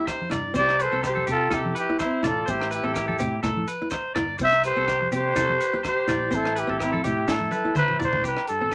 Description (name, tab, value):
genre	highlife guitar band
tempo	125 BPM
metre	4/4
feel	swing 54% on 16ths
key	unclear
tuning	A4 = 437 Hz
part	growling trumpet	melody	0.0-8.7 s	E4 to E5	-26 LUFS	equal	none
part	warm alto saxophone	second line	0.0-8.0 s	C4 to C5	-34 LUFS	equal	none
part	fingerpicked steel-string acoustic guitar	accompaniment	0.0-8.7 s	C4 to E4	-33 LUFS	equal	none
part	electric guitar at the edge of break-up	arpeggios	0.0-8.7 s	G4 to D5	-32 LUFS	equal	none
part	tight funk drum kit	drums	0.1-8.7 s	hi-hat, kick drum, rim click, snare drum, toms	-35 LUFS	equal	none
part	agogo bells	percussion	0.1-8.7 s	none	-45 LUFS	equal	none
part	maracas	percussion	0.1-8.7 s	none	-47 LUFS	equal	none
part	congas	percussion	0.2-8.2 s	none	-37 LUFS	equal	none
part	fingered electric bass	bass	0.3-8.7 s	G1 to C3	-35 LUFS	equal	none
room	moderate studio ambience, RT60 0.5 s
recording	none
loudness	-24 LUFS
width	mono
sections	0.0-8.2 A section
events	drum fill 7.3-8.2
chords	0.0 Am7; 4.4 C; 6.3 Am7; 8.2 C5